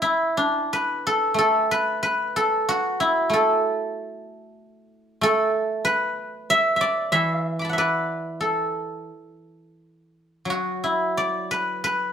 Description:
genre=chinese traditional, Chinese solo plucked strings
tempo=84-96 BPM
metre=4/4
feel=rubato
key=E shang mode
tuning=A4 = 439 Hz
part: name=guzheng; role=solo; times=0.0-12.1 s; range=E3 to D6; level=-20 LUFS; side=equal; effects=none
room=moderate stone room reverb, RT60 1.0 s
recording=band playing live in one room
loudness=-20 LUFS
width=side -8 dB against mid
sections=0.0-12.1 A section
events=none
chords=none

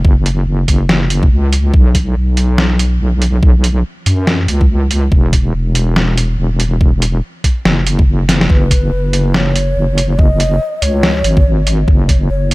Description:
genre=deep dubstep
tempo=142 BPM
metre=4/4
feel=swing 59% on 16ths, half-time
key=unclear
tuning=A4 = 440 Hz
part: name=wobble bass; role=bass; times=0.0-12.5 s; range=E1 to F#2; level=-13 LUFS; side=equal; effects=chorus, tube saturation
part: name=electronic kick drum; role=drums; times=0.0-12.2 s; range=none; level=-10 LUFS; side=equal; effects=overdrive
part: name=trip hop sampler-style drum kit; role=drums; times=0.3-12.5 s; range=hi-hat, snare drum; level=-17 LUFS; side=equal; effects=none
part: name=breathy mellow low ney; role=melody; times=8.5-12.5 s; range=B4 to D#5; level=-20 LUFS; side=equal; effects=dub echo
room=little or no reverb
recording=none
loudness=-10 LUFS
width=side -21 dB against mid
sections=0.0-12.5 A section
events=drum fill 8.3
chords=0.0 F#5; 1.7 B5; 5.1 Esus2; 8.5 F#sus2; 11.9 F#5

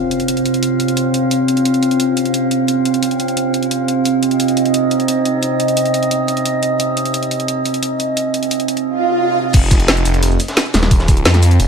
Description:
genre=dark technical drum and bass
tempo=175 BPM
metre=4/4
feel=straight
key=unclear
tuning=A4 = 440 Hz
part: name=metallic inharmonic drone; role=sustained chords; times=0.0-9.5 s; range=C3 to F5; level=-16 LUFS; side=right 2 dB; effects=chorus, built-in reverb, sidechain pumping
part: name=drum and bass drum kit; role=drums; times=0.1-11.7 s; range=crash cymbal, hi-hat, shaker, snare drum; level=-19 LUFS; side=equal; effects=overdrive
part: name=swell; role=sound effects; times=8.9-9.5 s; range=none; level=-19 LUFS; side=right 3 dB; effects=none
part: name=phased detuned saw bass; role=bass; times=9.5-11.7 s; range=Eb1 to F2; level=-13 LUFS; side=equal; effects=phaser
part: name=crunchy breakbeat drum kit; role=drums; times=9.5-11.7 s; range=hi-hat, snare drum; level=-27 LUFS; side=left 1 dB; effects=none
part: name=electronic kick drum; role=drums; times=9.5-11.2 s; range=none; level=-11 LUFS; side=equal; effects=none
room=moderate lush hall reverb, RT60 2.1 s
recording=none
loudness=-13 LUFS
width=side -6 dB against mid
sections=0.0-9.5 A section; 9.5-11.7 B section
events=filter sweep on synth drone 0.0-9.5; swell 8.9-9.5; drop 9.5-11.7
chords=0.0 F5

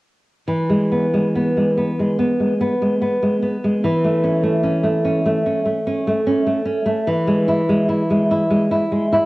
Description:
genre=classical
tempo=73 BPM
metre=4/4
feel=rubato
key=E major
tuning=A4 = 439 Hz
part: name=nylon-string guitar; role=accompaniment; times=0.5-9.3 s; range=E3 to E4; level=-16 LUFS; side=equal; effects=cassette tape
room=light reverb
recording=home recording on cassette, lossy compression artefacts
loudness=-16 LUFS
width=side -20 dB against mid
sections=0.5-9.3 A section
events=none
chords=0.5 E; 3.8 A/E; 7.1 E

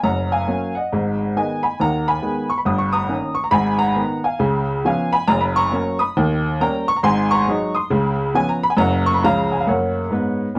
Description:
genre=jazz, stride piano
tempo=137 BPM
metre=4/4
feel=swing 63% on 8ths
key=F# major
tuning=A4 = 436 Hz
part: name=clear upright piano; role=solo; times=0.0-10.6 s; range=F#1 to D#6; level=-16 LUFS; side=equal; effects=none
room=light reverb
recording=dry, close 1970s-style studio recording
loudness=-16 LUFS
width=side -26 dB against mid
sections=0.0-10.6 A section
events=none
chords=0.0 F#; 0.9 G#m; 2.7 D#7/G; 3.5 G#m; 4.4 C#7; 5.3 F#; 6.2 D#7; 7.0 G#7; 7.9 C#7; 8.8 F#; 9.2 C#; 9.7 F#

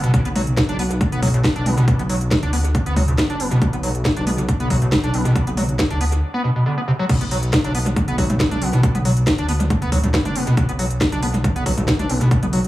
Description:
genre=driving peak-time techno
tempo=138 BPM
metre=4/4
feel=straight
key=B minor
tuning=A4 = 440 Hz
part: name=overdriven acid bass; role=riff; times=0.0-12.6 s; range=A2 to D4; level=-21 LUFS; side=equal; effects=analog chorus, sidechain pumping, analog delay
part: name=dark detuned saw bass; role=bass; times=0.0-12.7 s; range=F#1 to D2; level=-22 LUFS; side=equal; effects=sidechain pumping
part: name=techno drum kit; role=drums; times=0.0-12.7 s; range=crash cymbal, hi-hat, snare drum, toms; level=-23 LUFS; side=equal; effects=overdrive, analog delay
part: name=electronic kick drum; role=drums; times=0.1-12.4 s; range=none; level=-21 LUFS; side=equal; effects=overdrive
room=light reverb, digital ambience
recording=echo-heavy mix, small room ambience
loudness=-16 LUFS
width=side -16 dB against mid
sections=0.0-7.1 A section; 7.1-12.7 B section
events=drop 7.1-12.7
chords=0.0 B5

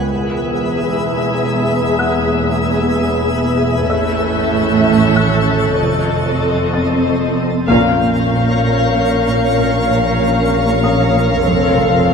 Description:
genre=cinematic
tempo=95 BPM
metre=3/4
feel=straight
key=Bb dorian from 7.7 s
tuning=A4 = 439 Hz
part: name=twinkling granular texture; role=sustained chords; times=0.0-12.1 s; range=C4 to F5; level=-20 LUFS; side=equal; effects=built-in reverb
part: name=metallic inharmonic drone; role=drone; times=0.0-12.1 s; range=A1 to F2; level=-22 LUFS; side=left 1 dB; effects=chorus, built-in reverb
part: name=felt-muted upright piano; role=texture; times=0.0-12.1 s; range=E5 to A6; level=-28 LUFS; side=left 2 dB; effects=none
part: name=muted chamber violin section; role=melody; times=0.1-12.1 s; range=Eb5 to F5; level=-21 LUFS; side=left 6 dB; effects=none
part: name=muted chamber viola section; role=accompaniment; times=0.1-12.1 s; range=B3 to Bb4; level=-20 LUFS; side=left 1 dB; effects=none
part: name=muted chamber cello section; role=bass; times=0.1-12.1 s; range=E2 to Bb2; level=-20 LUFS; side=right 4 dB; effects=none
part: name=muted chamber double bass section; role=bass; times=0.1-12.1 s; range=E1 to Bb1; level=-21 LUFS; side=right 3 dB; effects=none
part: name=muted chamber violin section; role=texture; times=3.9-12.1 s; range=C6 to G6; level=-29 LUFS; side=left 4 dB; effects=none
part: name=muted chamber cello section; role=riff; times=7.7-12.1 s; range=F2 to Bb2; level=-22 LUFS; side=right 1 dB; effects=none
room=moderate scoring stage reverb, RT60 1.9 s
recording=none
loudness=-13 LUFS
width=side -6 dB against mid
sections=0.0-7.7 A section; 7.7-12.1 B section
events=band accent 7.7-8.3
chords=0.1 E; 3.9 A; 5.8 F7; 7.7 Bbm; 11.5 F

